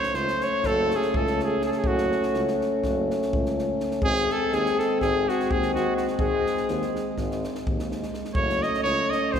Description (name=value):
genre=balkan folk, Balkan brass band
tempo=248 BPM (eighths)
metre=9/8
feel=straight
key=F# dorian sharp4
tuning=A4 = 439 Hz
part: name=clear trumpet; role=melody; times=0.0-9.4 s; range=F#4 to D#5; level=-26 LUFS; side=right 1 dB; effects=none
part: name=mellow alto saxophone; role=second line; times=0.0-9.4 s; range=F#4 to D#5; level=-31 LUFS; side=left 3 dB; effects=none
part: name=mellow euphonium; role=accompaniment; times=0.0-9.4 s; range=B#3 to C#4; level=-29 LUFS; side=left 4 dB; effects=none
part: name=warm trombone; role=accompaniment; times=0.0-9.4 s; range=G#3 to A3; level=-31 LUFS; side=right 4 dB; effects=none
part: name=compact cocktail drum kit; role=percussion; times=0.0-9.4 s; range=kick drum, snare drum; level=-32 LUFS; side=equal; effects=none
part: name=warm tuba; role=bass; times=0.1-9.4 s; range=F#1 to D#2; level=-33 LUFS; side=equal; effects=none
room=wet church reverb, RT60 2.6 s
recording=recorded in a church or concert hall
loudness=-22 LUFS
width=side -8 dB against mid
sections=0.0-9.4 A section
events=none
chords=0.0 F#m; 4.0 G#; 8.4 F#m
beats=0.13 0.37 0.62 0.86 1.11 1.35 1.59 | 1.84 2.08 2.32 2.57 2.81 3.05 3.29 3.54 3.78 | 4.02 4.26 4.51 4.75 4.99 5.23 5.47 5.71 5.96 | 6.20 6.44 6.68 6.92 7.16 7.40 7.64 7.88 8.12 | 8.36 8.60 8.84 9.08 9.32